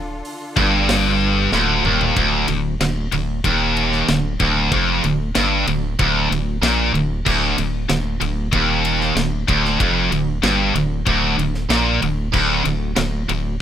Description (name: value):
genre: heavy metal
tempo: 94 BPM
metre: 4/4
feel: straight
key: D phrygian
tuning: A4 = 440 Hz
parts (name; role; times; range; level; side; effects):
- muted studio string section; sustained chords; 0.0-2.1 s; D3 to A4; -32 LUFS; left 1 dB; none
- rubbery square bass; bass; 0.0-13.6 s; D1 to Bb1; -23 LUFS; equal; none
- tight metal drum kit; drums; 0.2-13.4 s; crash cymbal, hi-hat, kick drum, ride cymbal, snare drum, toms; -24 LUFS; equal; none
- high-gain distorted guitar; riff; 0.6-13.5 s; D2 to Bb2; -21 LUFS; right 9 dB; distortion
- scooped high-gain guitar; riff; 0.6-13.5 s; D2 to Bb2; -20 LUFS; left 9 dB; distortion
room: small room ambience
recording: rough home demo mix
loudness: -16 LUFS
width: side -10 dB against mid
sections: 0.0-2.2 A section; 2.2-13.6 B section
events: half time 0.0-2.2; drum fill 1.5-2.2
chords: 0.0 Dm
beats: 0.25 0.89 1.52 | 2.16 2.80 3.44 4.08 | 4.71 5.35 5.99 6.63 | 7.26 7.90 8.53 9.17 | 9.80 10.44 11.07 11.71 | 12.34 12.97